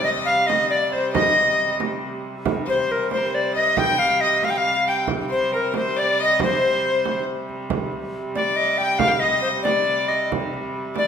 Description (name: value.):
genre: medieval dance.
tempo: 92 BPM (dotted quarters).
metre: 6/8.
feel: straight.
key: C minor.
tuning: A4 = 440 Hz.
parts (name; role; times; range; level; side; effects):
bright reedy tenor recorder; melody; 0.0-11.1 s; Bb4 to G5; -20 LUFS; left 1 dB; none.
clear fiddle; second line; 0.0-11.1 s; Bb4 to G5; -25 LUFS; left 4 dB; none.
rich hurdy-gurdy; drone; 0.0-11.1 s; C3 to G3; -29 LUFS; right 2 dB; none.
frame drum; percussion; 0.1-11.1 s; none; -28 LUFS; right 6 dB; none.
room: wet recital hall reverb, RT60 1.5 s.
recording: minimal, uncompressed stereo recording.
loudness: -18 LUFS.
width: side -7 dB against mid.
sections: 0.0-7.7 A section; 7.7-11.1 B section.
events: none.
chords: none.